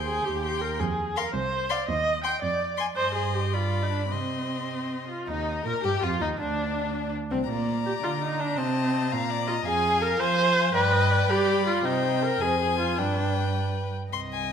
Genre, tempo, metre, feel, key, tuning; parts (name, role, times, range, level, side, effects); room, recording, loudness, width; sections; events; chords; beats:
quick classical-period movement for string quartet; 102-113 BPM (dotted quarters); 6/8; rubato; C minor, Eb major from 5.3 s; A4 = 439 Hz
warm violin; melody; 0.0-14.5 s; C4 to C6; -32 LUFS; left 10 dB
rich violin; second line; 0.0-14.5 s; C4 to Ab5; -34 LUFS; left 5 dB
warm cello; bass; 0.0-14.5 s; C2 to G3; -29 LUFS; right 3 dB
rich viola; accompaniment; 0.1-13.6 s; Bb3 to G5; -26 LUFS; right 1 dB
moderate scoring stage reverb, RT60 1.6 s; -24 LUFS; side -7 dB against mid
0.0-5.3 A section; 5.3-14.1 B section
0.0 Cm/Eb; 0.8 Fm; 1.9 Cm/Eb (rootless); 2.4 Dm/F; 3.0 Cm/G; 3.5 G7; 4.1 Cm; 5.3 Eb; 6.4 N.C.; 7.5 Bb; 8.6 Adim/C; 9.1 Bb; 9.7 Fmadd11; 10.7 G; 11.8 Cm; 12.4 Fm; 13.0 G
0.25 | 0.80 1.35 | 1.89 2.42 | 2.97 3.53 | 4.11 4.70 | 5.28 5.84 | 6.39 6.94 | 7.49 8.03 | 8.58 9.12 | 9.65 10.20 | 10.75 11.30 | 11.85 12.41 | 12.98 13.56 | 14.13